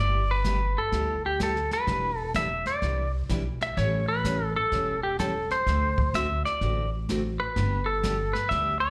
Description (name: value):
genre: country, western swing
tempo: 127 BPM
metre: 4/4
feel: swing 66% on 8ths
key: G major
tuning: A4 = 440 Hz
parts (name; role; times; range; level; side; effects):
- clean lap steel guitar; melody; 0.0-8.9 s; G4 to E5; -29 LUFS; equal; slapback echo
- picked steel-string acoustic guitar; accompaniment; 0.0-8.7 s; D3 to B4; -36 LUFS; equal; slapback echo
- upright bass; bass; 0.0-8.9 s; E1 to D2; -32 LUFS; equal; none
- jazz brush drum kit; drums; 0.4-8.9 s; brushed snare drum, hi-hat, kick drum, snare drum; -35 LUFS; equal; none
room: studio reverb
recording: live gig heard through the venue's PA, club reverb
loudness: -27 LUFS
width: mono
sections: 0.0-8.9 A section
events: none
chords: 0.0 G6; 1.9 Em7; 3.8 A7; 5.7 D7; 7.6 G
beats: 0.45 0.93 1.40 | 1.88 2.35 2.83 3.30 | 3.77 4.25 4.72 5.20 | 5.67 6.14 6.62 7.09 | 7.56 8.04 8.51